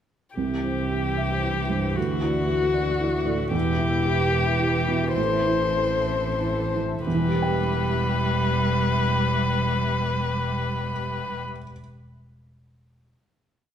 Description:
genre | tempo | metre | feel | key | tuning
neoclassical piano and strings | 90-116 BPM | 3/4 | rubato | E minor | A4 = 440 Hz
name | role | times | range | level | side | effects
muted violin | melody | 0.4-11.4 s | F#4 to C5 | -26 LUFS | left 4 dB | none
muted cello | second line | 0.4-11.4 s | E3 to G3 | -30 LUFS | right 5 dB | none
felt-muted upright piano | accompaniment | 0.4-11.8 s | C2 to G5 | -28 LUFS | right 2 dB | none
muted chamber string section | sustained chords | 0.4-11.4 s | G3 to E5 | -37 LUFS | right 2 dB | none
vibraphone with soft mallets | arpeggios | 0.4-7.0 s | C4 to A5 | -34 LUFS | left 5 dB | none
muted double bass | bass | 0.4-11.4 s | E1 to D2 | -28 LUFS | equal | none
room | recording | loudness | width
moderate recital hall reverb, RT60 1.5 s | recorded in a church or concert hall | -22 LUFS | side -9 dB against mid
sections
0.4-7.1 theme; 7.1-10.9 final chord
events
slowing down 2.8-7.1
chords
0.4 C; 2.0 Dadd9; 3.5 Em; 5.2 Am; 7.1 Em

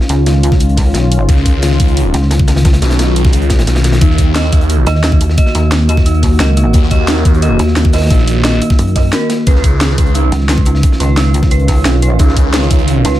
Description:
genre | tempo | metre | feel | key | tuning
dark technical drum and bass | 176 BPM | 4/4 | straight | unclear | A4 = 441 Hz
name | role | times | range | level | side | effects
sweeping resonant pad | sustained chords | 0.0-13.2 s | Eb3 to Gb4 | -18 LUFS | left 1 dB | chorus, sidechain pumping
crunchy breakbeat drum kit | drums | 0.0-13.2 s | hi-hat, snare drum | -24 LUFS | equal | high-pass filter on hats, high-pass filter on snare, high-pass filter on room
pulsing pluck wobble bass | bass | 0.1-2.8, 4.9-13.2 s | Cb2 to Gb2 | -12 LUFS | equal | chorus
drum and bass drum kit | drums | 0.1-13.1 s | hi-hat, snare drum | -18 LUFS | equal | none
electronic kick drum | drums | 0.5-12.8 s | none | -11 LUFS | equal | none
phased detuned saw bass | bass | 1.3-13.0 s | Bb1 to Eb2 | -12 LUFS | equal | phaser, tube saturation
dark detuned synth bell | arpeggios | 4.0-13.2 s | Eb4 to Eb5 | -20 LUFS | right 4 dB | chorus, phaser, sidechain pumping, digital delay
room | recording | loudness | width
digital ambience | none | -9 LUFS | side -14 dB against mid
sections
0.0-13.2 A section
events
none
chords
0.0 Dbadd9; 4.0 Ebm; 9.5 Dbadd9

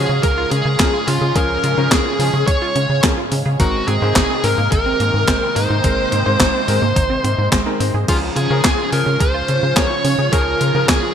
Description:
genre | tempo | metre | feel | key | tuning
synthwave | 107 BPM | 4/4 | straight | Db major | A4 = 440 Hz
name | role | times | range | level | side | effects
dark smooth lead guitar | melody | 0.0-11.1 s | F4 to Db5 | -20 LUFS | equal | overdrive, ping-pong delay
string machine, violins | second line | 0.0-11.1 s | F4 to Db5 | -26 LUFS | left 1 dB | ensemble chorus, vintage 12-bit sampler grit, digital delay
lush unison pad | sustained chords | 0.0-11.1 s | Ab2 to F5 | -26 LUFS | equal | chorus, phaser, sidechain pumping
clear electric grand piano | stabs | 0.0-10.9 s | F3 to C5 | -25 LUFS | left 2 dB | lush chorus, digital delay
tight sequencer bass | bass | 0.0-11.0 s | Ab1 to Db3 | -20 LUFS | equal | none
analog pluck | arpeggios | 0.1-11.1 s | Bb3 to Ab4 | -27 LUFS | right 5 dB | chorus, digital delay
clean 12-bit digital drum machine | drums | 0.2-11.0 s | crash cymbal, handclaps, hi-hat, snare drum | -20 LUFS | equal | gated reverb
electronic kick drum | drums | 0.2-11.0 s | none | -19 LUFS | equal | none
room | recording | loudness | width
light reverb, digital ambience | bright 1980s-style digital production | -14 LUFS | side -8 dB against mid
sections
0.0-11.1 A section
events
none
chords
0.0 Db; 3.6 Abadd9; 8.1 Db

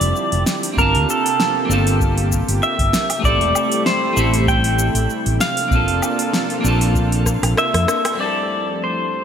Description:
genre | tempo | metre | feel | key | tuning
sunset chillout | 97 BPM | 4/4 | swing 54% on 16ths | F major | A4 = 440 Hz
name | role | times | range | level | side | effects
pedal steel guitar | melody | 0.0-9.2 s | A4 to G5 | -20 LUFS | equal | wide subtle chorus, ping-pong delay
clean electric guitar | accompaniment | 0.0-9.2 s | F2 to A5 | -23 LUFS | moving between left 4 dB and right 8 dB | auto-pan
lush unison pad | sustained chords | 0.0-9.2 s | C3 to A5 | -26 LUFS | equal | chorus
mellow fretless electric bass | bass | 0.0-7.8 s | E1 to F2 | -19 LUFS | equal | tube saturation
smooth R&B drum kit | drums | 0.0-9.2 s | cabasa, hi-hat, rim click, snare drum, woodblock | -23 LUFS | equal | overdrive, low-pass filter on perc, low-pass filter on hats, low-pass filter on snare, gated reverb
electronic kick drum | drums | 0.8-7.4 s | none | -22 LUFS | equal | none
room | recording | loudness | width
moderate lush hall reverb, RT60 2.6 s | bright 1980s-style digital production | -15 LUFS | side -8 dB against mid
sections
0.0-8.2 A section; 8.2-9.2 B section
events
drum fill 7.3-8.2; kick drops out 7.6-8.2; band accent 8.0-8.3; filter sweep on analog synth pad 8.2-9.2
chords
0.0 Fmaj13; 0.8 Gm11; 3.2 Am7; 5.4 Bbmaj9; 8.2 Fmaj13

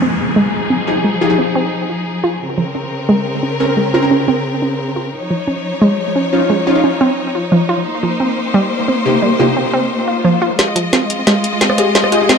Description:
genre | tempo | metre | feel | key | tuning
dark technical drum and bass | 176 BPM | 4/4 | straight | F minor | A4 = 440 Hz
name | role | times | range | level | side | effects
clear studio string section | sustained chords | 0.0-12.4 s | Db3 to Eb5 | -18 LUFS | left 2 dB | low-pass filter
wide unison pluck | arpeggios | 0.0-12.4 s | F3 to F4 | -16 LUFS | right 1 dB | tape echo
downlifter and swell | sound effects | 0.0-2.4, 10.0-10.6 s | none | -22 LUFS | left 2 dB | none
orchestra-hit-like synth stab | stabs | 0.9-1.4, 3.6-4.1, 6.3-6.8, 9.1-9.5, 11.8-12.3 s | C3 to Eb5 | -16 LUFS | equal | built-in reverb, tape echo
drum and bass drum kit | drums | 10.6-12.4 s | hi-hat, rim click, snare drum | -14 LUFS | equal | none
room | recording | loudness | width
moderate plate reverb, RT60 1.2 s | dark, warm production | -13 LUFS | side -6 dB against mid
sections
0.0-10.6 A section; 10.6-12.4 B section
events
filter sweep on synth arpeggio sound 0.0-10.6; swell 10.0-10.6; build-up 10.6-12.4; drum fill 10.6-12.4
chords
0.0 Fm7; 2.4 Bbmadd9; 5.1 Dbadd9; 7.9 Cm7; 10.6 Fm7

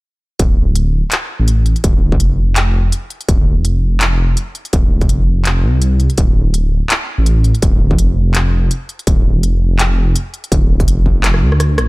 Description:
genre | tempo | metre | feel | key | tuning
half-time drum and bass | 166 BPM | 4/4 | swing 56% on 16ths, half-time | D minor | A4 = 440 Hz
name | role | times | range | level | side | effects
dark detuned saw bass | bass | 0.4-11.9 s | D1 to D2 | -13 LUFS | equal | none
electronic kick drum | drums | 0.4-11.1 s | none | -14 LUFS | equal | distortion
industrial drum kit | drums | 0.4-11.9 s | handclaps, hi-hat, rim click | -19 LUFS | equal | none
room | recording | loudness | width
digital ambience | none | -12 LUFS | side -22 dB against mid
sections
0.4-11.9 A section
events
drum fill 11.2-11.9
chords
none

